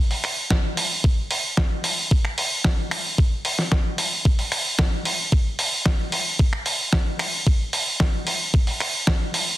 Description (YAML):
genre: nu-disco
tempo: 112 BPM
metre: 4/4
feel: straight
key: none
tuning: none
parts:
  - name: dusty soul sampler-style drum kit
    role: drums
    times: 0.1-9.5 s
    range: finger snaps, hi-hat, snare drum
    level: -23 LUFS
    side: equal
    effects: none
  - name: electronic kick drum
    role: drums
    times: 0.5-9.2 s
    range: none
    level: -20 LUFS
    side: equal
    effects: overdrive
room: little or no reverb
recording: dense, heavily limited modern master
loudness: -20 LUFS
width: side -16 dB against mid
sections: 0.0-9.6 A section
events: none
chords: none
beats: 0.50 | 1.04 1.57 2.11 2.65 | 3.18 3.72 4.25 4.79 | 5.32 5.86 6.40 6.93 | 7.47 8.00 8.54 9.07